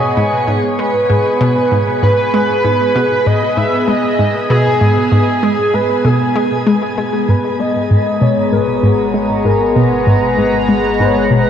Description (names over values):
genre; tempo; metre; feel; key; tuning
ambient, sequencer-driven space music; 97 BPM; 4/4; straight; G# minor; A4 = 441 Hz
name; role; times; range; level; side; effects
pulse-width lead; melody; 0.0-11.5 s; G#4 to E5; -16 LUFS; right 1 dB; chorus, analog delay
sweeping resonant pad; sustained chords; 0.0-11.5 s; G#3 to A#5; -16 LUFS; left 1 dB; chorus
analog pluck; riff; 0.0-11.5 s; G#2 to G#3; -15 LUFS; equal; chorus, analog delay
round analog bass; bass; 7.3-11.5 s; G#1; -31 LUFS; equal; none
room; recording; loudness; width
wet shimmer reverb, RT60 8.3 s; worn, warbling old tape, cassette tape, warbly pitch drift; -11 LUFS; side -9 dB against mid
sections
0.0-7.3 A section; 7.3-11.5 B section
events
fade-in on analog synth bass 7.3-11.5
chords
0.0 G#m; 7.3 G#m7